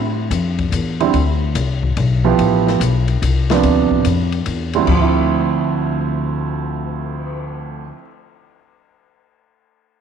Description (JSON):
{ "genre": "modal jazz", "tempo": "145 BPM", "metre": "3/4", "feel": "swing 67% on 8ths", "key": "D dorian", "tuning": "A4 = 440 Hz", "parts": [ { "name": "upright bass", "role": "bass", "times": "0.0-7.9 s", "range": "A1 to A2", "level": "-18 LUFS", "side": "left 2 dB", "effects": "none" }, { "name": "open jazz drum kit", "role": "drums", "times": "0.3-7.3 s", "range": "crash cymbal, cymbal swell, hi-hat, kick drum, ride cymbal, snare drum", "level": "-26 LUFS", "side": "left 10 dB", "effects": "none" }, { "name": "warm upright piano", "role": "accompaniment", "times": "1.0-8.1 s", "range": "D2 to G4", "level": "-18 LUFS", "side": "right 7 dB", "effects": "none" } ], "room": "light reverb, small room ambience", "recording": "1960s-style stereo with parts hard left and right", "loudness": "-15 LUFS", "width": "side -7 dB against mid", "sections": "0.0-4.9 A section; 4.9-7.4 B section", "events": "none", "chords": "0.0 Dm9" }